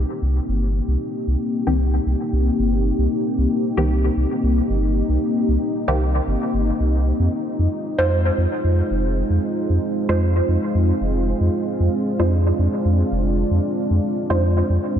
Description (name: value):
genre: dub techno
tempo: 114 BPM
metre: 4/4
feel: straight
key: C minor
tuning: A4 = 440 Hz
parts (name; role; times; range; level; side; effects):
- dark analog pad; sustained chords; 0.0-15.0 s; Ab3 to G4; -22 LUFS; left 1 dB; chorus
- warm sub bass; bass; 0.0-15.0 s; F1 to F2; -19 LUFS; equal; none
- filtered dub chord stab; stabs; 1.7-14.4 s; Eb3 to C5; -27 LUFS; equal; chorus, phaser, dub echo
room: moderate cathedral reverb, RT60 5.2 s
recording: dreamy mix soaked in reverb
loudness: -18 LUFS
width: side -9 dB against mid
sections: 0.0-15.0 A section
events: none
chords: 0.0 Cm7; 7.2 Fm7